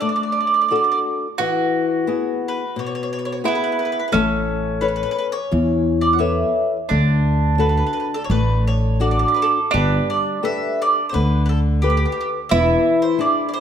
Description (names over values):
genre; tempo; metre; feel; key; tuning
italian folk, Italian serenade; 86 BPM; 4/4; rubato; D major, G major from 9.7 s; A4 = 440 Hz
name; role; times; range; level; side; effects
mandolin; melody; 0.0-13.6 s; G4 to F#5; -22 LUFS; right 3 dB; none
mandolin; second line; 0.0-13.6 s; C#4 to F#4; -25 LUFS; right 5 dB; none
flamenco guitar; accompaniment; 0.0-13.6 s; B2 to C#5; -23 LUFS; left 6 dB; none
upright bass; bass; 4.1-12.8 s; E1 to E2; -19 LUFS; equal; none
room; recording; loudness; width
light reverb; none; -17 LUFS; side -8 dB against mid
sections
0.0-9.7 A section; 9.7-13.6 B section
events
none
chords
0.0 D; 1.4 E; 4.1 Aadd9; 6.9 D; 9.7 Gadd9; 12.5 E7